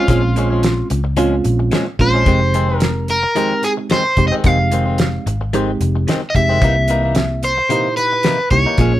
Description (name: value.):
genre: straight-eighth soul blues.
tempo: 110 BPM.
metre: 4/4.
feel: straight.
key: F minor.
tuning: A4 = 441 Hz.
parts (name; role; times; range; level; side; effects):
overdriven semi-hollow guitar; melody; 0.0-9.0 s; F4 to F5; -18 LUFS; equal; none.
reed electric piano; accompaniment; 0.0-9.0 s; Bb2 to Ab4; -21 LUFS; right 3 dB; none.
direct-recorded clean electric guitar; stabs; 0.0-9.0 s; F2 to D#4; -23 LUFS; left 4 dB; none.
vintage muted fingered electric bass; bass; 0.1-9.0 s; F1 to Db2; -18 LUFS; equal; none.
damped 70s drum kit; drums; 0.1-8.9 s; hi-hat, kick drum, snare drum; -18 LUFS; equal; none.
room: light reverb.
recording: band playing live in one room.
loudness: -13 LUFS.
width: side -14 dB against mid.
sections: 0.0-9.0 A section.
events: none.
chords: 0.0 Bbm7; 2.3 Fm7; 6.6 C7#9.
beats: | 0.08 0.63 1.17 1.72 | 2.26 2.81 3.35 3.90 | 4.44 4.99 5.53 6.07 | 6.62 7.16 7.70 8.25 | 8.79.